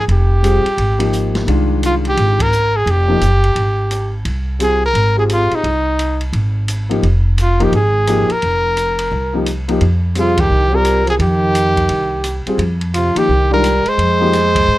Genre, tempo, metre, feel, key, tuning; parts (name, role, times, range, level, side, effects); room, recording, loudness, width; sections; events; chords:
modal jazz; 173 BPM; 4/4; swing 63% on 8ths; F dorian; A4 = 440 Hz
clear trumpet; melody; 0.0-14.8 s; Eb4 to C5; -16 LUFS; equal
upright bass; bass; 0.0-14.8 s; F1 to Ab2; -16 LUFS; equal
open jazz drum kit; drums; 0.1-14.6 s; hi-hat, kick drum, ride cymbal, snare drum; -26 LUFS; equal
warm grand piano; accompaniment; 0.4-14.3 s; Eb3 to Bb4; -19 LUFS; left 2 dB
growling trombone; second line; 10.2-14.8 s; C3 to Ab3; -20 LUFS; right 3 dB
light reverb; dark, warm production; -13 LUFS; side -16 dB against mid
0.0-14.8 A section
band accent 2.3, 10.3
0.0 Fm11